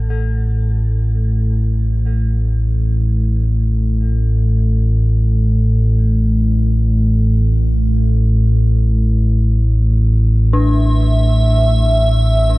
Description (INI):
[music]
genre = dark ambient drone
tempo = free time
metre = none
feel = none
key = unclear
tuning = A4 = 439 Hz
[part]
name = dark detuned synth bell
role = arpeggios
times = 0.0-12.6 s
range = D4 to A4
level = -25 LUFS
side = left 2 dB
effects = chorus, ping-pong delay, shimmer reverb
[part]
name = deep rumbling drone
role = drone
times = 0.0-12.6 s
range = A1 to A2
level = -13 LUFS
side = equal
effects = built-in reverb
[part]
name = icy glass pad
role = texture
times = 10.8-12.6 s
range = E5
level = -18 LUFS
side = right 2 dB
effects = chorus, built-in reverb, shimmer reverb
[sound]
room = moderate huge ambient reverb, RT60 7.6 s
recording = worn, warbling old tape, cassette tape, warbly pitch drift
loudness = -12 LUFS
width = side -20 dB against mid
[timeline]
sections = 0.0-12.6 A section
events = none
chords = 0.0 A5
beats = free time